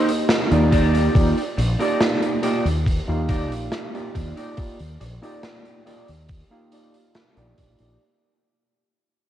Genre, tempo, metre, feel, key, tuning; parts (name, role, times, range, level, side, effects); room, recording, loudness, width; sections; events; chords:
vaporwave; 70 BPM; 4/4; straight; A4 = 439 Hz
overdriven tine electric piano; accompaniment; 0.0-8.0 s; Bb3 to F5; -24 LUFS; right 1 dB; lush chorus, vintage 12-bit sampler grit, tape echo
electric guitar at the edge of break-up; riff; 0.0-8.0 s; Eb4 to D5; -27 LUFS; right 1 dB; analog chorus, vintage 12-bit sampler grit, low-pass filter, tape echo
raw garage drum kit; drums; 0.1-8.0 s; hi-hat, snare drum; -25 LUFS; equal; gated reverb
mellow fretless electric bass; bass; 0.5-8.0 s; Bb1 to Eb2; -22 LUFS; equal; tube saturation
electronic kick drum; drums; 0.7-7.8 s; -21 LUFS; equal
light reverb, small room reverb; cassette tape; -18 LUFS; side -11 dB against mid
0.0-8.0 A section
fade-out 0.0-8.0; filter sweep on clean electric guitar 0.0-8.0
0.0 Cm9 (rootless); 0.7 Ebmaj7